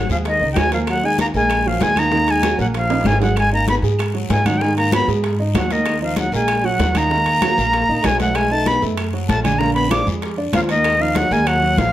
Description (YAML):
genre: Afro-Cuban jazz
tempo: 193 BPM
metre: 4/4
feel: straight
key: Eb minor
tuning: A4 = 436 Hz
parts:
  - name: bright reedy silver concert flute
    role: melody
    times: 0.0-11.9 s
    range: Eb5 to D6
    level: -19 LUFS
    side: equal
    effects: plate reverb
  - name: breathy trombone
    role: second line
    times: 0.0-11.9 s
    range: Eb3 to D4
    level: -25 LUFS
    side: left 3 dB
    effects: none
  - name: warm baby grand piano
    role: accompaniment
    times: 0.0-11.9 s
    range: D3 to Eb5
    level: -23 LUFS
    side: right 3 dB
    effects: none
  - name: upright bass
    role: bass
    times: 0.0-11.9 s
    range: Ab1 to Ab2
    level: -22 LUFS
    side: equal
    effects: none
  - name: bongos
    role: percussion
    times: 0.1-11.9 s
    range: none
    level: -30 LUFS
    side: left 6 dB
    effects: none
  - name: congas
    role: percussion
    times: 0.1-11.9 s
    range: none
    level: -26 LUFS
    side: left 2 dB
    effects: none
  - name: guiro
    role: percussion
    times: 0.1-11.9 s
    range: none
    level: -35 LUFS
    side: left 7 dB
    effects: none
  - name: timbales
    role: percussion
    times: 0.3-11.9 s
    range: none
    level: -29 LUFS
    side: right 6 dB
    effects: none
  - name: claves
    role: percussion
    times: 0.6-11.6 s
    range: none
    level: -35 LUFS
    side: right 4 dB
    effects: none
room: moderate large studio reverb, RT60 0.8 s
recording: none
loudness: -15 LUFS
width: side -13 dB against mid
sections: 0.0-11.9 A section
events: drum fill 2.9-3.4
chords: 0.0 Absus2; 5.9 Ebm; 8.4 B7; 9.6 Bb7; 10.8 Ebmadd9